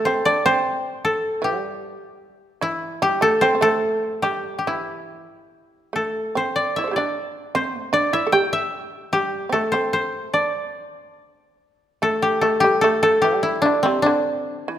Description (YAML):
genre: japanese traditional, Japanese chamber music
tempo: 70-79 BPM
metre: 2/4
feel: rubato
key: D suspended pentatonic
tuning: A4 = 440 Hz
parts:
  - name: koto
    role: melody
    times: 0.0-14.8 s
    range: C4 to G5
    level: -20 LUFS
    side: left 1 dB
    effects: none
  - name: shamisen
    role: second line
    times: 0.0-14.8 s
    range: C3 to D5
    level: -25 LUFS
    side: right 4 dB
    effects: none
room: moderate concert hall reverb, RT60 2.0 s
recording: none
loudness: -18 LUFS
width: side -11 dB against mid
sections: 0.0-12.0 A section; 12.0-14.8 B section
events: none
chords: none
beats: | 0.65 1.42 | 2.21 3.01 | 3.83 4.66 | 5.51 6.36 | 7.16 7.93 | 8.72 9.53 | 10.34 11.17 | 12.01 12.83 | 13.65 14.46